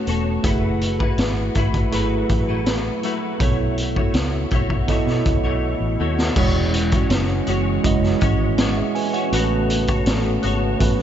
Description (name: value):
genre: indie pop, bedroom pop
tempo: 81 BPM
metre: 4/4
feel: straight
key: E major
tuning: A4 = 440 Hz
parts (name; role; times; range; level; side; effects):
- direct-recorded clean electric guitar; accompaniment; 0.0-11.0 s; B2 to C#5; -26 LUFS; left 4 dB; ensemble chorus, warbly pitch drift
- mellow tine electric piano; accompaniment; 0.0-11.0 s; G#3 to G#5; -24 LUFS; right 5 dB; cassette tape
- vintage muted fingered electric bass; bass; 0.1-11.0 s; E1 to B2; -23 LUFS; left 1 dB; none
- raw garage drum kit; drums; 0.1-11.0 s; crash cymbal, hi-hat, kick drum, snare drum; -22 LUFS; equal; none
- hollow soft pad; sustained chords; 6.4-11.0 s; C#3 to F#4; -27 LUFS; right 1 dB; chorus
room: moderate cathedral reverb, RT60 5.1 s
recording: dreamy mix soaked in reverb, nothing above 7.7 kHz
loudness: -18 LUFS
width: side -10 dB against mid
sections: 0.0-6.4 A section; 6.4-11.0 B section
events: drum fill 5.6-6.4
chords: 0.4 F#m11; 3.4 B9sus4; 6.4 E69; 9.3 A69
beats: | 0.44 1.18 1.92 2.66 | 3.40 4.14 4.88 5.62 | 6.37 7.11 7.84 8.59 | 9.33 10.07 10.81